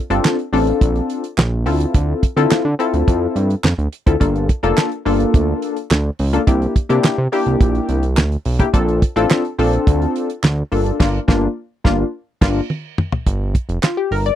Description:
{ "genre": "early-eighties boogie funk", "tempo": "106 BPM", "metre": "4/4", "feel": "straight", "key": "G dorian", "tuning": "A4 = 440 Hz", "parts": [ { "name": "funky polysynth comp", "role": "accompaniment", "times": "0.1-14.4 s", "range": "Bb3 to D5", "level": "-18 LUFS", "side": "left 3 dB", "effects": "chorus" }, { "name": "fat analog bass", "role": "bass", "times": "0.1-14.3 s", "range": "F1 to D3", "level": "-18 LUFS", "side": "right 1 dB", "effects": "none" }, { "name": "damped 70s drum kit", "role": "drums", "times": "0.1-14.4 s", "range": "crash cymbal, handclaps, hi-hat, kick drum, snare drum, toms", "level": "-16 LUFS", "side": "right 1 dB", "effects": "none" }, { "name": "group handclap", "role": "percussion", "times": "0.2-14.0 s", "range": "none", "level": "-26 LUFS", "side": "right 8 dB", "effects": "none" } ], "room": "little or no reverb", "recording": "dry, close 1970s-style studio recording", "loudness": "-15 LUFS", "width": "side -11 dB against mid", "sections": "0.0-13.3 A section; 13.3-14.4 B section", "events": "band accent 11.0-13.3; drum fill 12.7-13.3; analog polysynth solo 13.3-14.4", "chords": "0.0 Bbmaj9; 1.7 Dm9; 4.2 Gm9; 6.5 C7; 8.7 Bbmaj9; 10.7 Gm7; 13.3 G5" }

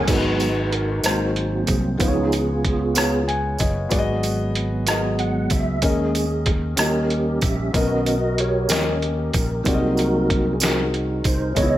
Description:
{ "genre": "slow gospel", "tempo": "63 BPM (dotted quarters)", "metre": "6/8", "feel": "straight", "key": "G# minor", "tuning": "A4 = 440 Hz", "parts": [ { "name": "dark grand piano", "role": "accompaniment", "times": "0.0-11.8 s", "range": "G#2 to G#5", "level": "-25 LUFS", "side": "left 3 dB", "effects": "none" }, { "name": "mellow tonewheel organ", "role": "sustained chords", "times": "0.0-11.8 s", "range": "D#3 to F#5", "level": "-23 LUFS", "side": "right 2 dB", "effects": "fast rotary speaker, chorus vibrato" }, { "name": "fingered electric bass", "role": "bass", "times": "0.0-11.8 s", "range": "F#1 to D#2", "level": "-25 LUFS", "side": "equal", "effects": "none" }, { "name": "trip hop sampler-style drum kit", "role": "drums", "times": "0.1-11.7 s", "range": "crash cymbal, hi-hat, kick drum, rim click, snare drum", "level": "-23 LUFS", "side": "equal", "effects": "overdrive" }, { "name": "tambourine", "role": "percussion", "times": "0.1-11.8 s", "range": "none", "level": "-30 LUFS", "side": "right 6 dB", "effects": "none" } ], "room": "moderate large studio reverb, RT60 1.4 s", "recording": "none", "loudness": "-18 LUFS", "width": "side -14 dB against mid", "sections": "0.1-11.8 A section", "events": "tonewheel organ solo 0.1-11.8; grand piano fill 3.0-3.9", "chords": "0.1 G#m7; 1.0 G#7; 2.0 C#7; 3.9 G#m7; 5.8 D#7sus4; 6.8 D#7; 7.7 Bmaj7; 8.7 D#7; 9.7 G#7/B#" }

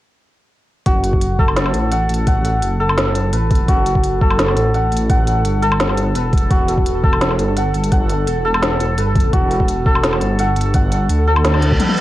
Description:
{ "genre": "half-time drum and bass", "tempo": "170 BPM", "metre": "4/4", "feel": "half-time", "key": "F# phrygian", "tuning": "A4 = 444 Hz", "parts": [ { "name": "santur", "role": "arpeggios", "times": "0.9-12.0 s", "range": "F#4 to F#5", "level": "-20 LUFS", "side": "left 1 dB", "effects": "cassette tape, tape echo" }, { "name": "dark detuned saw bass", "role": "bass", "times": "0.9-11.8 s", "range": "E1 to D2", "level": "-18 LUFS", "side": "equal", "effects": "none" }, { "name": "electronic kick drum", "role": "drums", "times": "0.9-11.8 s", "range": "none", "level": "-16 LUFS", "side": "equal", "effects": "cassette tape" }, { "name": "organic electronic drum kit", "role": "drums", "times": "0.9-12.0 s", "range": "hi-hat, snare drum, toms, woodblock", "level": "-21 LUFS", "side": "equal", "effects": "overdrive, cassette tape" }, { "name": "pulsing gated texture", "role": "texture", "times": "0.9-12.0 s", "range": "A4", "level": "-28 LUFS", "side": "right 2 dB", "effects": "chorus, built-in reverb, cassette tape" }, { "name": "reverse cymbal", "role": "sound effects", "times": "11.6-12.0 s", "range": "none", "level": "-22 LUFS", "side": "right 2 dB", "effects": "none" } ], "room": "light reverb", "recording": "home recording on cassette", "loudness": "-14 LUFS", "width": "side -15 dB against mid", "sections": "0.9-12.0 A section", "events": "reverse cymbal 11.6-12.0; drum fill 11.8", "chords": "0.9 F#m7; 6.5 Em7" }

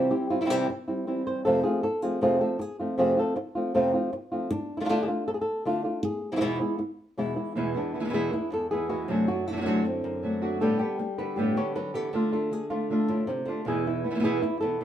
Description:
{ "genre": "flamenco", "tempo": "157 BPM", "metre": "4/4", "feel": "straight", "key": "E phrygian dominant", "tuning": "A4 = 440 Hz", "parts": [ { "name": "flamenco guitar", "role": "melody", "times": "0.0-14.8 s", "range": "E2 to C#5", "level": "-26 LUFS", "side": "equal", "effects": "none" }, { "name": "flamenco guitar", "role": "stabs", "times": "7.6-14.8 s", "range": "E2 to G4", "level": "-27 LUFS", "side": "right 1 dB", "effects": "none" } ], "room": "wet studio reverb, RT60 0.8 s", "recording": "band playing live in one room", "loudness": "-25 LUFS", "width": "side -10 dB against mid", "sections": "0.0-7.6 A section; 7.6-14.8 B section", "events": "none", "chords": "0.0 C; 1.5 F; 4.5 Dm; 6.0 E; 9.1 D7/F#; 10.6 Gadd9; 12.1 Dm; 13.7 E" }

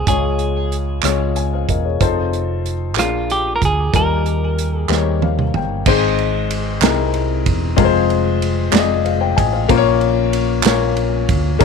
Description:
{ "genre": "slow gospel", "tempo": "62 BPM (dotted quarters)", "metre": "6/8", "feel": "straight", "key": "unclear", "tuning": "A4 = 441 Hz", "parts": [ { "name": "semi-hollow electric guitar", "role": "melody", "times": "0.0-5.2 s", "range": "F4 to Bb4", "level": "-22 LUFS", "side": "right 2 dB", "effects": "tape echo" }, { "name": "warm upright piano", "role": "accompaniment", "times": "0.0-11.6 s", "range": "Ab2 to Ab5", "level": "-18 LUFS", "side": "left 12 dB", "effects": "none" }, { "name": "hollow-body short-scale fingered electric bass", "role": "bass", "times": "0.0-11.6 s", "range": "Fb1 to Eb2", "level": "-20 LUFS", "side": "right 2 dB", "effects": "none" }, { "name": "natural country drum kit", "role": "drums", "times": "0.1-11.6 s", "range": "crash cymbal, hi-hat, kick drum, ride cymbal, rim click, snare drum, toms", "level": "-20 LUFS", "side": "right 6 dB", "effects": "none" }, { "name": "group handclap", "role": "percussion", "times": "1.0-10.9 s", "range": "none", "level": "-22 LUFS", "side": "right 16 dB", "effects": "none" } ], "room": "light reverb", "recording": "1960s-style stereo with parts hard left and right", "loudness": "-15 LUFS", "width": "side -5 dB against mid", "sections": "0.0-5.9 A section; 5.9-11.6 B section", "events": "drum fill 4.9-5.9; upright piano fill 4.9-5.9", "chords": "0.1 Db; 2.0 F7; 3.0 Bb7; 3.9 Eb; 5.9 Ab; 6.8 C7alt; 7.8 Fm; 9.7 Bbm" }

